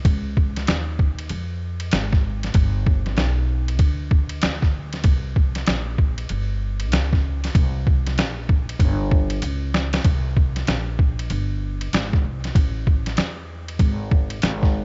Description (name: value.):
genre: hip hop, jazz-hop.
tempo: 96 BPM.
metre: 4/4.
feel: swing 63% on 16ths.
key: unclear.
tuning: A4 = 440 Hz.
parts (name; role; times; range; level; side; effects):
upright bass; bass; 0.0-14.8 s; G1 to F2; -27 LUFS; equal; none.
trip hop sampler-style drum kit; drums; 0.0-14.7 s; hi-hat, kick drum, ride cymbal, snare drum; -22 LUFS; equal; cassette tape.
room: little or no reverb.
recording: home recording on cassette, nothing above 7.7 kHz.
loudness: -22 LUFS.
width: mono.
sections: 0.0-10.1 A section; 10.1-14.8 B section.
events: drum fill 9.4-10.1.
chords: none.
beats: | 0.05 0.68 1.30 1.93 | 2.55 3.17 3.80 4.42 | 5.05 5.67 6.30 6.92 | 7.55 8.18 8.80 9.43 | 10.05 10.68 11.30 11.93 | 12.55 13.18 13.80 14.43.